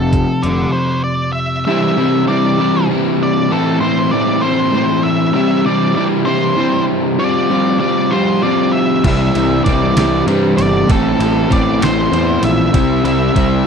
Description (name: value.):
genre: indie rock.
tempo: 65 BPM (dotted quarters).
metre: 6/8.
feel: straight.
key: unclear.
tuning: A4 = 441 Hz.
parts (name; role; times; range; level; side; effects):
octave-fuzz lead guitar; melody; 0.0-13.7 s; A4 to E5; -20 LUFS; right 1 dB; distortion.
overdriven semi-hollow guitar; riff; 0.0-13.7 s; F2 to F4; -14 LUFS; left 1 dB; none.
fuzz picked electric bass; bass; 0.0-0.6, 9.0-13.6 s; F1 to G2; -18 LUFS; equal; overdrive.
detuned 8-bit digital drum machine; drums; 0.1-0.6, 9.0-13.5 s; crash cymbal, hi-hat, kick drum, ride cymbal, snare drum; -18 LUFS; equal; none.
room: digital ambience.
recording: dry, close 1970s-style studio recording.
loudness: -12 LUFS.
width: side -6 dB against mid.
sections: 0.0-1.7 A section; 1.7-13.7 B section.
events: break 0.7-1.7.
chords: 0.0 F; 1.7 Cadd9; 3.5 Am; 5.4 C; 7.2 Fsus2; 9.0 Cadd9; 10.9 Am; 12.7 C.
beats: 0.74 | 1.66 2.59 | 3.51 4.43 | 5.35 6.27 | 7.20 8.12 | 9.04 9.96 | 10.89 11.81 | 12.73 13.66.